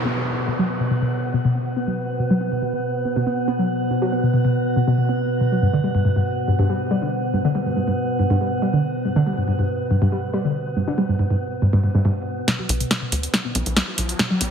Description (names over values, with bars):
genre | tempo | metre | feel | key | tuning
driving peak-time techno | 140 BPM | 4/4 | straight | unclear | A4 = 440 Hz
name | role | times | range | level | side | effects
metallic inharmonic drone | drone | 0.0-12.5 s | B2 to B3 | -24 LUFS | right 1 dB | chorus, built-in reverb
downlifter and riser | sound effects | 0.0-2.2, 13.2-14.5 s | none | -31 LUFS | equal | none
warbly dusty pluck | riff | 0.1-14.5 s | G2 to B3 | -21 LUFS | equal | chorus, tube saturation, dub echo
techno drum kit | drums | 12.5-14.5 s | hi-hat, snare drum | -21 LUFS | equal | none
tight sequencer bass | bass | 12.7-14.5 s | B1 to D2 | -24 LUFS | equal | none
room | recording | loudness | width
wet stone room reverb, RT60 1.0 s | heavily compressed radio sound, multiband compression | -19 LUFS | side -7 dB against mid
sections
0.0-12.5 A section; 12.5-14.5 B section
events
filter sweep on synth arpeggio sound 0.0-12.5, 12.5-14.5; build-up 12.5-14.5; drum fill 12.5-14.5; riser 13.2-14.5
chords
0.0 B5; 5.6 G5; 12.5 N.C.